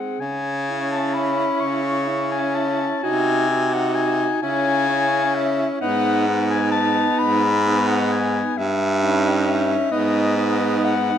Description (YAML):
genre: classical, lyrical piece for single-reed quartet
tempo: 43 BPM (dotted quarters)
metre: 6/8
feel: rubato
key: C# minor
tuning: A4 = 440 Hz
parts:
  - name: mellow clarinet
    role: melody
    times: 0.0-11.2 s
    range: D#5 to C#6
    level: -22 LUFS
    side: left 6 dB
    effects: none
  - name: warm alto saxophone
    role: second line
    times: 0.0-11.2 s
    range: D#4 to G#4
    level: -26 LUFS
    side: right 9 dB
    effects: none
  - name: clear tenor saxophone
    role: accompaniment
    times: 0.0-11.2 s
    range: B3 to D#4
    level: -24 LUFS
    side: left 2 dB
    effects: none
  - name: clear baritone saxophone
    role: bass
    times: 0.2-11.1 s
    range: G2 to C#3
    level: -23 LUFS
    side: right 2 dB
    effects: none
room: moderate recital hall reverb, RT60 1.6 s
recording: none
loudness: -18 LUFS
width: side -9 dB against mid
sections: 0.2-11.2 A section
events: none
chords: 0.2 C#m; 3.0 G#7/B#; 4.4 C#m; 5.8 G#m; 8.6 D#7/G; 9.9 G#m